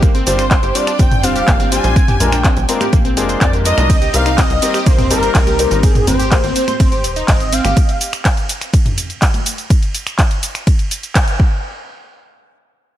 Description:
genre	progressive house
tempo	124 BPM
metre	4/4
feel	straight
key	unclear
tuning	A4 = 440 Hz
part	glassy wavetable pluck	arpeggios	0.0-7.7 s	Bb3 to C6	-21 LUFS	right 1 dB	chorus, sidechain pumping, digital delay
part	tight sequencer bass	bass	0.0-7.7 s	D1 to F2	-20 LUFS	equal	sidechain pumping
part	electronic kick drum	drums	0.0-11.5 s	none	-13 LUFS	equal	overdrive
part	house drum kit	drums	0.0-11.4 s	finger snaps, handclaps, hi-hat, ride cymbal, shaker	-20 LUFS	equal	none
part	expressive synth lead	melody	0.3-8.0 s	Ab4 to Ab5	-20 LUFS	equal	ensemble chorus, sidechain pumping, digital delay
part	bright symphonic violin section	second line	0.3-5.8 s	Bb4 to Ab5	-27 LUFS	equal	sidechain pumping, digital delay
part	bright baby grand piano	stabs	0.3-5.8 s	G3 to C5	-21 LUFS	left 4 dB	sidechain pumping, digital delay
part	electronic toms and congas	percussion	1.1-9.4 s	none	-24 LUFS	equal	overdrive, sidechain pumping on toms, sidechain pumping on perc
room	digital ambience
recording	none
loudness	-12 LUFS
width	side -12 dB against mid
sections	0.0-11.6 A section; 11.6-13.0 B section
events	drop 0.0-11.6; band accent 11.2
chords	0.0 G7sus4; 2.0 Bb7; 3.9 Cm7; 5.8 Abmaj7; 7.8 N.C.

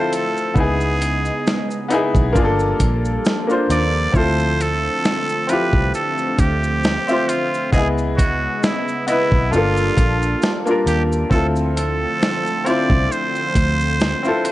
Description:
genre	lo-fi hip hop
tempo	67 BPM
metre	4/4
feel	swing 55% on 16ths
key	D dorian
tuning	A4 = 440 Hz
part	trumpet with straight mute	melody	0.0-14.5 s	E4 to D5	-22 LUFS	right 2 dB	none
part	bright upright piano	accompaniment	0.0-14.5 s	A3 to E5	-21 LUFS	left 2 dB	cassette tape
part	warm analog pad	sustained chords	0.0-14.5 s	C#3 to A5	-26 LUFS	equal	chorus
part	dusty soul sampler-style drum kit	drums	0.1-14.5 s	hi-hat, kick drum, shaker, snare drum	-20 LUFS	equal	none
part	vintage muted fingered electric bass	bass	0.6-14.1 s	G1 to Eb2	-21 LUFS	equal	none
room	little or no reverb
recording	nothing above 11.0 kHz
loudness	-16 LUFS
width	side -16 dB against mid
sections	0.0-14.5 A section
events	none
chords	0.0 Dm9; 0.6 C#m9; 2.4 Gm9; 4.1 Dm9; 7.7 C#m9; 9.5 Gm9; 11.3 Dm9

